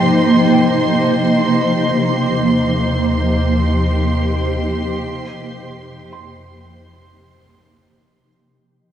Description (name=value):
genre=ambient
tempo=free time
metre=none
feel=none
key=unclear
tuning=A4 = 440 Hz
part: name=granular cloud pad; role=sustained chords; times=0.0-8.3 s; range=C3 to G4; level=-16 LUFS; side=equal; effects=built-in reverb
part: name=felt-muted upright piano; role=arpeggios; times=0.0-8.3 s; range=G5 to C6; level=-28 LUFS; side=left 2 dB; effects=tape echo
part: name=deep rumbling drone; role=bass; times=0.0-8.2 s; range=Eb2 to Ab2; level=-22 LUFS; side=equal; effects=built-in reverb, phaser
part: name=dark symphonic violin section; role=texture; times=0.0-8.3 s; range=C5 to C6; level=-22 LUFS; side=right 1 dB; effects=none
room=wet cathedral reverb, RT60 6.0 s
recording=cassette tape, small room ambience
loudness=-13 LUFS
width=side -9 dB against mid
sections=0.0-8.3 A section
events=fade-out 0.0-8.3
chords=0.0 Abmaj7; 1.8 Eb; 5.1 F9sus4